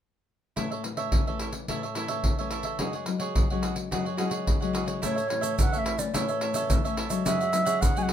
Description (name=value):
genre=samba and choro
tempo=108 BPM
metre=4/4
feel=straight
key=A major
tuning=A4 = 440 Hz
part: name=cavaquinho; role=accompaniment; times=0.6-8.1 s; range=E4 to F#5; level=-33 LUFS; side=right 5 dB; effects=none
part: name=nylon-string guitar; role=accompaniment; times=0.6-8.1 s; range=F#2 to C#4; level=-31 LUFS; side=left 6 dB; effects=none
part: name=surdo, pandeiro and egg shaker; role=percussion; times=0.6-8.1 s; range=none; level=-28 LUFS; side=equal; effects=none
part: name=wooden flute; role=melody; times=5.0-8.1 s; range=C#5 to G#5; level=-28 LUFS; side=right 3 dB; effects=none
room=light reverb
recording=minimal, uncompressed stereo recording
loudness=-25 LUFS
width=side -10 dB against mid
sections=0.6-5.0 A section; 5.0-8.1 B section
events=none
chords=0.6 A; 2.8 F#sus2; 5.0 A; 7.3 F#sus2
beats=| 0.57 1.13 1.69 2.25 | 2.80 3.36 3.92 4.48 | 5.03 5.59 6.15 6.70 | 7.26 7.82